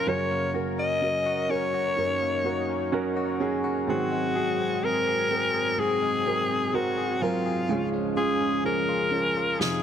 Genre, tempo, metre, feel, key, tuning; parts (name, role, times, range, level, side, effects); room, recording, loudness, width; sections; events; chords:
pop ballad; 63 BPM; 4/4; straight; A4 = 440 Hz
breathy alto saxophone; melody; 0.0-9.8 s; F4 to Eb5; -26 LUFS; left 2 dB
dark upright piano; accompaniment; 0.0-9.8 s; Db2 to Bb4; -29 LUFS; right 5 dB
chorused pulse-width pad; sustained chords; 0.0-9.8 s; F3 to Bb4; -34 LUFS; left 2 dB
direct-recorded clean electric guitar; arpeggios; 0.0-9.8 s; F2 to Ab4; -33 LUFS; left 8 dB; tape echo
snare drum; drums; 9.6-9.8 s; -27 LUFS; right 1 dB
light reverb, small room ambience; -23 LUFS; side -8 dB against mid
0.0-9.8 A section
drum fill 9.6
0.1 Gb; 3.9 Ab7; 7.7 Db